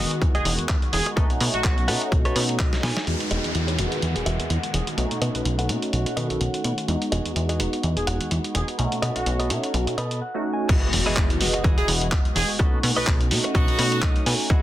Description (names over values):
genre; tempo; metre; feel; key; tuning
filtered disco house; 126 BPM; 4/4; swing 56% on 16ths; E major; A4 = 438 Hz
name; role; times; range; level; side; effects
funky polysynth comp; accompaniment; 0.0-14.6 s; D#3 to D#5; -28 LUFS; equal; chorus, phaser, sidechain pumping, low-pass filter
direct-recorded clean electric guitar; riff; 0.0-14.6 s; E4 to G#5; -31 LUFS; equal; sidechain pumping, low-pass filter
plucky analog bass; bass; 0.0-14.6 s; E1 to B2; -26 LUFS; equal; sidechain pumping, low-pass filter
dusty soul sampler-style drum kit; drums; 0.1-14.6 s; crash cymbal, handclaps, hi-hat, snare drum; -27 LUFS; equal; sidechain pumping on hats, sidechain pumping on cymbals
electronic kick drum; drums; 0.2-2.7, 10.7-14.6 s; none; -21 LUFS; equal; overdrive
clear horn section; melody; 0.3-14.2 s; F#4 to B4; -30 LUFS; right 1 dB; sidechain pumping, low-pass filter, digital delay
downlifter and impact; sound effects; 3.1-6.9, 10.7-12.6 s; none; -32 LUFS; equal; none
room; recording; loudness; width
light reverb, digital ambience; dense, heavily limited modern master; -20 LUFS; side -14 dB against mid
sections
0.0-3.1 A section; 3.1-10.7 B section; 10.7-14.6 C section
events
filter sweep 0.0-3.1, 3.1-10.7; clean electric guitar fill 2.4-3.1, 5.9-6.9, 9.7-10.7, 13.8-14.5; drum fill 2.7-3.1; drop 10.7-14.6; impact 10.7-12.6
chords
0.0 Emaj9; 1.2 B7; 3.1 Emaj9; 5.0 B7; 6.9 Emaj9; 8.8 B7; 10.7 Emaj9; 12.6 B7